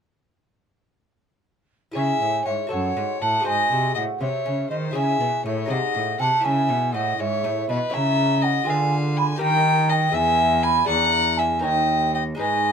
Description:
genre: classical, baroque-style sonata movement with continuo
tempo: 80 BPM (dotted quarters)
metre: 6/8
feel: straight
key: C# minor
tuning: A4 = 439 Hz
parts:
  - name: warm violin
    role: melody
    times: 1.9-12.7 s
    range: B4 to Ab5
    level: -25 LUFS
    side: left 8 dB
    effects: none
  - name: mellow hollow baroque flute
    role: second line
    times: 1.9-12.7 s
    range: D#5 to B5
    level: -23 LUFS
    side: right 4 dB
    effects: none
  - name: lute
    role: accompaniment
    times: 1.9-12.7 s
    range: D#2 to E5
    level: -30 LUFS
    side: left 2 dB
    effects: none
  - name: rich cello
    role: bass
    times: 2.0-12.7 s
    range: D#2 to D#3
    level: -25 LUFS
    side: equal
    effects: none
room: light reverb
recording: minimal, uncompressed stereo recording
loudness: -19 LUFS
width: side -7 dB against mid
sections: 2.0-12.7 A section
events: none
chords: 2.0 C#m; 2.7 F#m; 3.5 G#7; 5.0 C#m; 5.7 G#7; 6.4 C#m; 7.9 A#dim/C#; 8.7 Ddim7; 9.4 D#; 10.1 E; 10.9 E7; 11.6 D#7

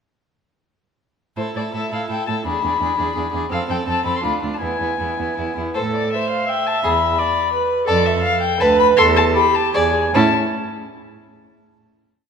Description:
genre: quick classical-period movement for string quartet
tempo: 147-173 BPM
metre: 3/4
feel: rubato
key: A minor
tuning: A4 = 440 Hz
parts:
  - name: dark violin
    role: melody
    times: 1.4-10.4 s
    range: C5 to C6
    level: -20 LUFS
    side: left 6 dB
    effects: none
  - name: warm violin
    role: second line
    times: 1.4-10.4 s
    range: E4 to D5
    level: -25 LUFS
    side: equal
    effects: none
  - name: warm viola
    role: accompaniment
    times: 1.4-10.4 s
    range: B3 to E5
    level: -21 LUFS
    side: right 5 dB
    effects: none
  - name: rich cello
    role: bass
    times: 1.4-10.4 s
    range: D2 to A2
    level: -24 LUFS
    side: right 4 dB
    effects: none
room: wet concert hall reverb, RT60 2.0 s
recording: none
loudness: -16 LUFS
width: side -6 dB against mid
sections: 1.4-5.8 A section; 5.8-10.1 A section; 10.1-11.3 final chord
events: none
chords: 1.4 A5; 2.5 E7; 3.5 F; 4.2 Dm; 4.6 E; 5.8 Am; 6.8 E7(no3); 7.9 F; 8.6 Bm7/D; 9.0 A5/E; 9.7 E7; 10.1 A

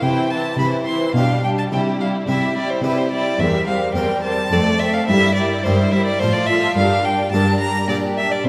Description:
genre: classical, baroque-style concerto movement with solo episodes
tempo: 107 BPM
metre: 3/4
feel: straight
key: unclear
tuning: A4 = 440 Hz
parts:
  - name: rich studio violin section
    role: melody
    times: 0.0-8.5 s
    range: G4 to C5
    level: -33 LUFS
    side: equal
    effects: none
  - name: rich violin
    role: melody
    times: 0.0-8.5 s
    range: B4 to C6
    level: -24 LUFS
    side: equal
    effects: none
  - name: rich chamber violin section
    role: second line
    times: 0.0-8.5 s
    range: C4 to F4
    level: -28 LUFS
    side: equal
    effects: none
  - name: harpsichord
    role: accompaniment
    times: 0.0-8.4 s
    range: E2 to Bb4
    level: -28 LUFS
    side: equal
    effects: none
  - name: warm symphonic viola section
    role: accompaniment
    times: 0.0-8.5 s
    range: E3 to A3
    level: -26 LUFS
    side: equal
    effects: none
  - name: rich chamber cello section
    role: bass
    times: 0.0-8.5 s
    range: E2 to C3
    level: -25 LUFS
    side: equal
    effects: none
room: wet scoring stage reverb, RT60 1.8 s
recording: heard from further back in the room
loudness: -18 LUFS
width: mono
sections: 0.0-8.5 A section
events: none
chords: 0.0 C; 1.2 G7/B; 1.7 C; 3.4 C7/E; 4.5 F; 5.1 Edim/G; 6.2 F/A; 6.8 Gm; 7.9 Gm/Bb

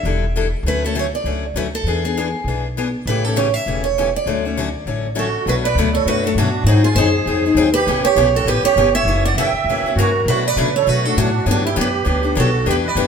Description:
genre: acoustic string swing (jazz manouche)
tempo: 200 BPM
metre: 4/4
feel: swing 58% on 8ths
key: D major, B minor from 5.5 s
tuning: A4 = 442 Hz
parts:
  - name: picked steel-string acoustic guitar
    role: melody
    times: 0.0-13.1 s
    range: F#4 to G5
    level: -20 LUFS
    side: right 5 dB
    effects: none
  - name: upright bass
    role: bass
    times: 0.0-13.1 s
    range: E1 to C#3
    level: -21 LUFS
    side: equal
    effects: none
  - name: picked steel-string acoustic guitar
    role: accompaniment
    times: 0.1-13.1 s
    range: B2 to A4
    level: -20 LUFS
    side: left 5 dB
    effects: none
  - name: musette accordion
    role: second line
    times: 5.2-13.1 s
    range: D4 to E5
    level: -22 LUFS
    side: right 6 dB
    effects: none
room: wet stone room reverb, RT60 1.3 s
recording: band playing live in one room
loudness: -15 LUFS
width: side -6 dB against mid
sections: 0.0-5.5 A section; 5.5-13.1 B section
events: none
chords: 0.0 A7sus4; 0.6 Dmaj7; 1.9 E7; 3.1 A7; 4.3 Dmaj7; 5.5 Bm7; 6.7 G#7; 7.9 C#m7b5; 9.1 F#7b9; 10.3 Bm9; 11.5 Gmaj9

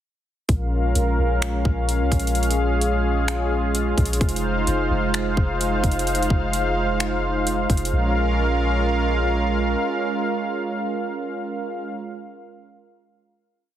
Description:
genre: hip hop, atmospheric cloud-rap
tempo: 129 BPM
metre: 4/4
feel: half-time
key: Bb minor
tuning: A4 = 443 Hz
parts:
  - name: warm analog pad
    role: sustained chords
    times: 0.5-11.9 s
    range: Ab3 to F5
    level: -22 LUFS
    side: right 1 dB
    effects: chorus, sidechain pumping
  - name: soft 808-style bass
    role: bass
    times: 0.5-9.8 s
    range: F1 to C2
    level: -23 LUFS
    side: equal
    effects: none
  - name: trap drum kit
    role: drums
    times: 0.5-7.9 s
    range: finger snaps, hi-hat, kick drum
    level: -23 LUFS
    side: equal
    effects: none
room: light reverb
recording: heavily compressed radio sound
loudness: -20 LUFS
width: side -11 dB against mid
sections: 0.5-7.9 verse; 7.9-11.7 final chord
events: none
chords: 0.5 Bbm7; 4.2 Fm7; 7.9 Bbm7

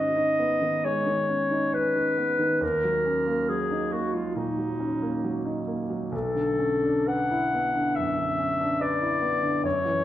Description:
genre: classical, impressionist duo for clarinet and grand piano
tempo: 60-73 BPM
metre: 4/4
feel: rubato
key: unclear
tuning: A4 = 439 Hz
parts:
  - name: clear clarinet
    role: melody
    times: 0.0-10.0 s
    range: D#4 to F#5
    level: -25 LUFS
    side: left 2 dB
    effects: none
  - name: clear concert grand piano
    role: accompaniment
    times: 0.0-10.0 s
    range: B1 to B4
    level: -28 LUFS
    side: right 1 dB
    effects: none
room: moderate recital hall reverb, RT60 1.3 s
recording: none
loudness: -23 LUFS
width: side -12 dB against mid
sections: 0.0-10.0 A section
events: none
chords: 0.0 G#m; 2.6 D#m7; 6.1 Bm11

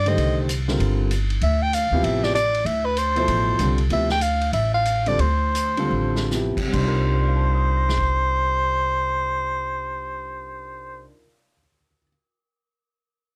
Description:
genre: modal jazz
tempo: 136-193 BPM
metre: 4/4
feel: swing 62% on 8ths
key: C dorian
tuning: A4 = 440 Hz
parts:
  - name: mellow soprano saxophone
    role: melody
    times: 0.0-11.0 s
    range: B4 to G5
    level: -25 LUFS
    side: equal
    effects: none
  - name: upright bass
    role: bass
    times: 0.0-11.1 s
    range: G1 to G2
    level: -26 LUFS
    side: equal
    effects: none
  - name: warm concert grand piano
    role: accompaniment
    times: 0.1-12.1 s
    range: B2 to D7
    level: -29 LUFS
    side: equal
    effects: none
  - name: vintage drum kit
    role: drums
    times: 0.1-8.1 s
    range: crash cymbal, hi-hat, kick drum, ride cymbal, snare drum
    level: -34 LUFS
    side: equal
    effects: none
room: little or no reverb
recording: close, detailed microphones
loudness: -22 LUFS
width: mono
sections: 0.0-6.7 A section; 6.7-10.3 B section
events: slowing down 3.9-6.7; drum fill 5.9-6.3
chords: 0.0 Cm11; 1.4 Dm11; 6.7 Cm11

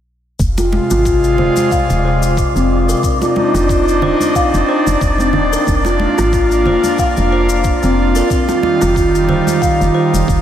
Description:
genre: organic downtempo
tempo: 91 BPM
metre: 4/4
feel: swing 55% on 16ths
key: F dorian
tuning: A4 = 440 Hz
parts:
  - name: airy breathy pad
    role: sustained chords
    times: 0.4-10.4 s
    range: C3 to F4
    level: -16 LUFS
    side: equal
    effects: chorus, sidechain pumping
  - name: woody FM bass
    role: bass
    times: 0.4-10.4 s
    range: Eb1 to Ab1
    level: -17 LUFS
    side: equal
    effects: sidechain pumping
  - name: electronic kick drum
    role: drums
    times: 0.4-10.4 s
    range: none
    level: -18 LUFS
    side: equal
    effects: none
  - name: shaker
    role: drums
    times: 0.4-10.4 s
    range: none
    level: -29 LUFS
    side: left 5 dB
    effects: overdrive
  - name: wind-like tuned noise texture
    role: texture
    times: 1.3-10.4 s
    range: D5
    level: -23 LUFS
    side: right 2 dB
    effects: built-in reverb, lush chorus
  - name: kalimba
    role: arpeggios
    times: 0.6-10.1 s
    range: C4 to F5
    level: -17 LUFS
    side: left 1 dB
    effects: low-pass filter, analog delay
  - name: congas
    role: percussion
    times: 0.6-9.6 s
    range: none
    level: -24 LUFS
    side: right 3 dB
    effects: none
room: wet lush hall reverb, RT60 2.4 s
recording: dreamy mix soaked in reverb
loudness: -11 LUFS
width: side -10 dB against mid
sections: 0.4-10.4 A section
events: filter sweep on FM bass 0.4-10.4; filter sweep on kalimba 0.4-10.4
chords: 0.4 Fm; 3.0 Cmadd9; 5.7 Bb/F; 8.3 Ebadd9

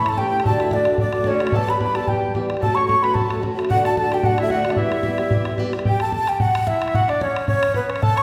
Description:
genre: celtic folk, Celtic reel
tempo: 222 BPM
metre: 4/4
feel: swing 55% on 8ths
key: E dorian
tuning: A4 = 440 Hz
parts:
  - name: baroque flute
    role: melody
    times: 0.0-8.2 s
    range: B4 to C#6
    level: -24 LUFS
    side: equal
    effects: none
  - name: fingerpicked acoustic archtop guitar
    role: accompaniment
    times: 0.0-5.9 s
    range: D2 to G4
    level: -25 LUFS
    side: equal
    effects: none
  - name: accordion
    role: second line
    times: 0.1-8.2 s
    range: B3 to C#5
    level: -30 LUFS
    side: equal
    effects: none
  - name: bodhran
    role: percussion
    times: 0.1-8.2 s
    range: none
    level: -26 LUFS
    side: equal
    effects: none
room: wet recital hall reverb, RT60 1.7 s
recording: recorded in a church or concert hall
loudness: -20 LUFS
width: mono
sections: 0.0-5.9 A section; 5.9-8.2 A section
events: none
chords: 0.4 D; 1.5 Em; 2.6 F#m; 3.7 D; 4.8 Em; 5.9 N.C.

